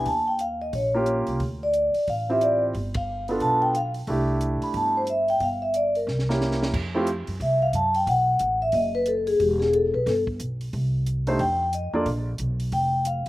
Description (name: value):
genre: jazz, small-group swing and bop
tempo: 180 BPM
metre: 4/4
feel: swing 62% on 8ths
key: C major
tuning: A4 = 440 Hz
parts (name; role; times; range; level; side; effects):
- vibraphone with soft mallets; melody; 0.0-13.3 s; G4 to B5; -22 LUFS; left 1 dB; none
- warm grand piano; accompaniment; 0.0-7.1, 11.3-12.1 s; A3 to D5; -26 LUFS; right 1 dB; slapback echo
- upright bass; bass; 0.0-13.3 s; E1 to F#2; -28 LUFS; equal; none
- compact cocktail drum kit; drums; 0.1-13.3 s; crash cymbal, hi-hat, kick drum, ride cymbal, snare drum; -35 LUFS; right 1 dB; none
room: little or no reverb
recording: recorded outdoors, with no room sound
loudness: -22 LUFS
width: side -16 dB against mid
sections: 0.0-6.7 A section; 6.7-13.3 B section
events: band accent 2.9; drum fill 6.1-6.7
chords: 0.1 Eb9; 1.4 Dm11; 2.7 G9; 4.1 C6; 5.4 G7(no3); 6.1 C7b9; 6.7 F5; 8.1 B5; 9.4 Em; 10.7 Cm; 11.4 F13; 12.1 Bb5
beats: | 0.08 0.42 0.75 1.08 | 1.42 1.75 2.08 2.42 | 2.75 3.08 3.42 3.75 | 4.08 4.42 4.75 5.08 | 5.41 5.75 6.08 6.41 | 6.75 7.08 7.41 7.74 | 8.08 8.41 8.74 9.07 | 9.41 9.74 10.07 10.40 | 10.74 11.07 11.40 11.74 | 12.07 12.40 12.73 13.07